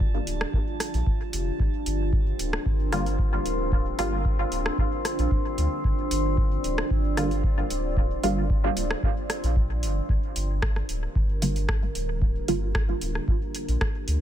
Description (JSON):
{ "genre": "dub techno", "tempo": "113 BPM", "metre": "4/4", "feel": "straight", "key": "G minor", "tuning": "A4 = 440 Hz", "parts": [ { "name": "deep dark ambient pad", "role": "sustained chords", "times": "0.0-14.2 s", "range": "D4 to D5", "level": "-32 LUFS", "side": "right 2 dB", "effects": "chorus, built-in reverb, sidechain pumping" }, { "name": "soft dub sub bass", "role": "bass", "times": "0.0-14.2 s", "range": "D1 to D2", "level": "-28 LUFS", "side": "equal", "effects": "sidechain pumping" }, { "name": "electronic kick drum", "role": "drums", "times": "0.0-13.9 s", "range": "none", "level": "-25 LUFS", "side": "equal", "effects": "small room ambience" }, { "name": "drifting glass-harmonics texture", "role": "texture", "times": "0.0-10.1 s", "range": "C4 to A5", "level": "-36 LUFS", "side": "left 6 dB", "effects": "chorus, built-in reverb, sidechain pumping" }, { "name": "booming analog drum machine", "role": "drums", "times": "0.3-14.2 s", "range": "hi-hat, rim click", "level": "-33 LUFS", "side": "equal", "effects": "small room ambience, dub echo" }, { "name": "filtered dub chord stab", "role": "stabs", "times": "2.9-12.7 s", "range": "D3 to F4", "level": "-31 LUFS", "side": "right 1 dB", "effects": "chorus, phaser, sidechain pumping, dub echo" } ], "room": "little or no reverb", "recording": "none", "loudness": "-23 LUFS", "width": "side -11 dB against mid", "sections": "0.0-10.1 A section; 10.1-14.2 A section", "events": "none", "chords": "0.0 Gm7" }